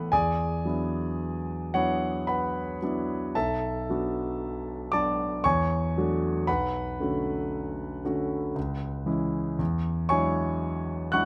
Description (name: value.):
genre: classical, impressionist solo piano.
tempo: 58 BPM.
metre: 3/4.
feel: rubato.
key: unclear.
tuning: A4 = 440 Hz.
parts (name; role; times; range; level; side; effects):
warm concert grand piano; solo; 0.0-11.3 s; B1 to F#6; -28 LUFS; equal; none.
room: little or no reverb.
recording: close, detailed microphones.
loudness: -28 LUFS.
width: mono.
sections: 0.0-11.3 A section.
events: none.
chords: 0.1 E9; 3.3 Bm7; 5.4 E11; 6.5 Bm9; 8.6 C#m7; 9.6 E9.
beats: | 0.12 1.19 2.27 | 3.34 4.40 5.44 | 6.47 7.52 8.56 | 9.60 10.62.